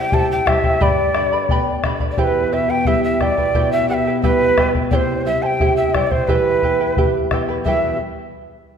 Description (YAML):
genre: andean folk, Andean ensemble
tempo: 88 BPM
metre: 2/4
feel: straight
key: E minor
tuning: A4 = 439 Hz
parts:
  - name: breathy mellow quena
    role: melody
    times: 0.0-8.0 s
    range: B4 to A5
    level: -19 LUFS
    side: right 1 dB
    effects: none
  - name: charango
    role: accompaniment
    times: 0.0-7.9 s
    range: E4 to B5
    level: -22 LUFS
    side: right 4 dB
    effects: none
  - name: nylon-string guitar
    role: accompaniment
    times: 0.0-8.0 s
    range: E2 to B4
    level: -23 LUFS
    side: left 4 dB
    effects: none
  - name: bombo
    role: percussion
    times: 0.1-8.0 s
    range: none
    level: -21 LUFS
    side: left 2 dB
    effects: none
room: wet scoring stage reverb, RT60 1.9 s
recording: minimal, uncompressed stereo recording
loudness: -15 LUFS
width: side -7 dB against mid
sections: 0.0-7.7 A section; 7.7-8.8 B section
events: none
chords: 0.0 C; 0.8 G; 2.2 Em; 4.9 C; 6.3 Em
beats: 0.13 | 0.81 1.50 | 2.18 2.86 | 3.55 4.23 | 4.92 5.60 | 6.29 6.97 | 7.66